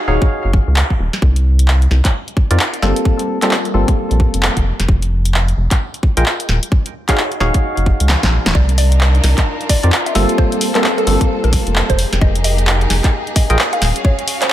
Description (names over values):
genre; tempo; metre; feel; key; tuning
UK garage, two-step garage; 131 BPM; 4/4; swing 61% on 16ths; C minor; A4 = 440 Hz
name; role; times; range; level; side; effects
percussive organ stab; stabs; 0.1-13.6 s; G3 to G5; -19 LUFS; equal; chorus, ping-pong delay
rubbery square bass; bass; 0.1-13.9 s; Eb1 to F2; -14 LUFS; equal; none
electronic kick drum; drums; 0.2-14.2 s; none; -15 LUFS; equal; none
punchy analog drum machine; drums; 0.8-14.5 s; handclaps, hi-hat, snare drum; -19 LUFS; equal; none
mallet-like synth pluck; melody; 8.5-14.5 s; A4 to F5; -23 LUFS; equal; chorus, phaser, ping-pong delay
warm symphonic violin section; sustained chords; 8.5-14.5 s; Bb3 to F5; -23 LUFS; left 1 dB; sidechain pumping
room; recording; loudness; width
light reverb; none; -12 LUFS; side -13 dB against mid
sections
0.0-14.5 A section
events
drum fill 8.1-8.6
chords
0.0 Ebm11; 1.2 Csus4; 2.8 Gm11; 4.7 N.C.; 6.5 Ebm11; 8.6 Cm11; 10.2 Gm11; 12.0 Fm11; 13.8 Ebm11